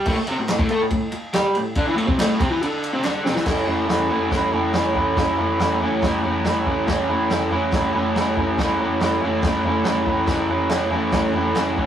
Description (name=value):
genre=garage rock duo or trio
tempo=141 BPM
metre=4/4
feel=straight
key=A major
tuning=A4 = 440 Hz
part: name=crunchy overdriven guitar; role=riff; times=0.0-11.9 s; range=A2 to A4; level=-20 LUFS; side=equal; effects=none
part: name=vintage drum kit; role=drums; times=0.1-11.9 s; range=crash cymbal, kick drum, ride cymbal, snare drum, toms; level=-24 LUFS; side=equal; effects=none
part: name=group handclap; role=percussion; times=0.5-3.1, 10.7-11.7 s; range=none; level=-34 LUFS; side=right 1 dB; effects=none
room=light reverb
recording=rough rehearsal-room recording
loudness=-18 LUFS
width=side -10 dB against mid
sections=0.0-3.5 A section; 3.5-11.9 B section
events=drum fill 3.0-3.5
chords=0.0 A5; 3.5 A